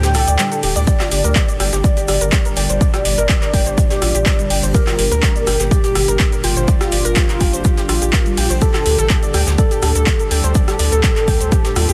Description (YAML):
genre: progressive house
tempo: 124 BPM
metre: 4/4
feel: straight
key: G minor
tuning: A4 = 440 Hz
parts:
  - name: warm velvety synth lead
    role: melody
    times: 0.0-11.9 s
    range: F4 to G5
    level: -24 LUFS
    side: equal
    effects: chorus, sidechain pumping, tape echo
  - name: soft synth bell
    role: second line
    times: 0.0-11.9 s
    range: F4 to G5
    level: -33 LUFS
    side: equal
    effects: none
  - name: shimmering ambient pad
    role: sustained chords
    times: 0.0-11.9 s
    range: A2 to G4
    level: -28 LUFS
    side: equal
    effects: chorus, built-in reverb, sidechain pumping
  - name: soft round pluck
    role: arpeggios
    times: 0.0-11.9 s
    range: G3 to G5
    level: -27 LUFS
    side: equal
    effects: lush chorus, sidechain pumping, tape echo
  - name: round analog bass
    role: bass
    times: 0.0-11.9 s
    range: D1 to Eb2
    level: -20 LUFS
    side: equal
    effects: tube saturation, sidechain pumping
  - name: jazz brush drum kit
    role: drums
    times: 0.0-11.9 s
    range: hi-hat, shaker, snare drum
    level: -34 LUFS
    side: equal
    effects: none
  - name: pop drum kit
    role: drums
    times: 0.0-11.9 s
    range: handclaps, hi-hat, rim click, shaker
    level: -24 LUFS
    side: equal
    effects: overdrive, sidechain pumping on hats, sidechain pumping on perc
  - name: electronic kick drum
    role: drums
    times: 0.9-11.6 s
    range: none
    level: -18 LUFS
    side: equal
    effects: overdrive
room: little or no reverb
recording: dense, heavily limited modern master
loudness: -16 LUFS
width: mono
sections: 0.0-11.9 A section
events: break 0.0-0.9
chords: 0.0 Dsus4; 0.9 Gm; 8.6 Dsus4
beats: 0.39 | 0.88 1.36 1.84 2.33 | 2.81 3.29 3.78 4.26 | 4.75 5.23 5.71 6.20 | 6.68 7.17 7.65 8.13 | 8.62 9.10 9.59 10.07 | 10.55 11.04 11.52